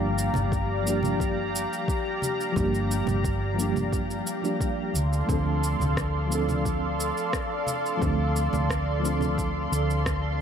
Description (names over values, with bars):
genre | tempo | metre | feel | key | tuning
sunset chillout | 88 BPM | 4/4 | straight | G minor | A4 = 437 Hz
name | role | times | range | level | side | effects
mellow FM electric piano | accompaniment | 0.0-10.4 s | F3 to A4 | -30 LUFS | equal | chorus, tremolo, auto-pan, ping-pong delay, shimmer reverb
lush unison pad | sustained chords | 0.0-10.4 s | G4 to C6 | -29 LUFS | equal | chorus, phaser, shimmer reverb
hollow-body short-scale fingered electric bass | bass | 0.0-10.4 s | G1 to D2 | -28 LUFS | equal | none
electronic shaker and rim click | drums | 0.2-10.2 s | none | -34 LUFS | right 1 dB | overdrive
congas | percussion | 0.3-9.3 s | none | -34 LUFS | right 2 dB | none
electronic kick drum | drums | 0.5-10.2 s | none | -30 LUFS | equal | overdrive
room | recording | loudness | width
moderate plate reverb, RT60 2.3 s | none | -24 LUFS | side -8 dB against mid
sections
0.0-10.4 A section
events
none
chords
0.0 Gm7; 5.0 Dm7